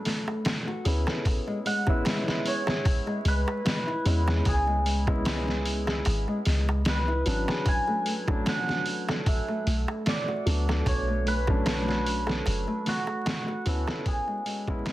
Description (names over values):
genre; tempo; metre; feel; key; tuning
trip hop; 75 BPM; 4/4; swing 54% on 16ths; B dorian; A4 = 436 Hz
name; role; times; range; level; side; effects
cimbalom; melody; 0.0-14.9 s; F#4 to G#5; -32 LUFS; right 1 dB; tape echo
felt-muted upright piano; accompaniment; 0.0-14.9 s; F#3 to G#4; -33 LUFS; left 1 dB; harmonic tremolo, tape echo
nylon-string guitar; arpeggios; 0.1-14.9 s; G#3 to A4; -34 LUFS; left 1 dB; ping-pong delay
trip hop sampler-style drum kit; drums; 0.1-14.9 s; hi-hat, kick drum, snare drum; -29 LUFS; equal; vintage 12-bit sampler grit, small room ambience
darbuka; percussion; 0.3-14.9 s; none; -37 LUFS; right 2 dB; none
soft 808-style bass; bass; 0.9-13.9 s; F#1 to E2; -27 LUFS; equal; none
room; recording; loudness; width
light reverb, small room ambience; dense, heavily limited modern master, vinyl crackle; -24 LUFS; side -16 dB against mid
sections
0.0-14.9 A section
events
fade-out 11.9-14.9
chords
0.0 Bm7; 1.3 C#m7; 7.7 Bm7; 14.1 C#m7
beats
0.46 | 1.26 2.06 2.86 3.66 | 4.46 5.26 6.06 6.86 | 7.66 8.46 9.26 10.06 | 10.86 11.66 12.46 13.26 | 14.06 14.86